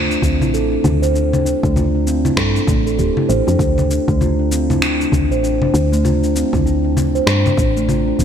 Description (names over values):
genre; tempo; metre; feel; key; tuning
organic downtempo; 98 BPM; 4/4; swing 60% on 16ths; D minor; A4 = 439 Hz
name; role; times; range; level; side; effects
steel tongue drum; arpeggios; 0.0-8.2 s; A3 to C5; -17 LUFS; equal; digital delay
woody FM bass; bass; 0.0-8.2 s; D1 to G2; -18 LUFS; equal; none
electronic cabasa, congas and finger snaps; drums; 0.1-8.2 s; none; -22 LUFS; left 2 dB; overdrive, gated reverb
electronic kick drum; drums; 0.2-7.7 s; none; -20 LUFS; equal; overdrive
room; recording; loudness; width
wet plate reverb, RT60 3.5 s; bright 1980s-style digital production; -14 LUFS; side -8 dB against mid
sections
0.0-8.2 A section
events
none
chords
0.0 D7(no3)